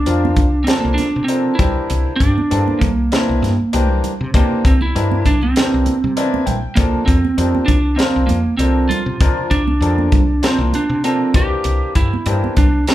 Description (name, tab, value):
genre	electric jazz fusion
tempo	98 BPM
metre	4/4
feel	swing 55% on 16ths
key	C mixolydian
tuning	A4 = 440 Hz
part	lightly driven lead guitar	melody	0.0-12.9 s	Bb3 to G4	-18 LUFS	right 2 dB	none
part	woody fretless electric bass	bass	0.0-12.8 s	Bb1 to C3	-19 LUFS	equal	none
part	bright concert grand piano	accompaniment	0.1-12.9 s	E3 to G5	-22 LUFS	left 4 dB	none
part	tight funk drum kit	drums	0.1-12.9 s	hi-hat, kick drum, snare drum	-17 LUFS	equal	none
part	congas	percussion	0.2-12.7 s	none	-26 LUFS	right 7 dB	none
room	light reverb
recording	band playing live in one room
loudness	-14 LUFS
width	side -14 dB against mid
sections	0.0-12.9 A section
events	grand piano fill 5.9-6.8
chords	0.0 Bbmaj9/C; 1.6 C9; 6.8 Bbmaj9/C; 11.3 C9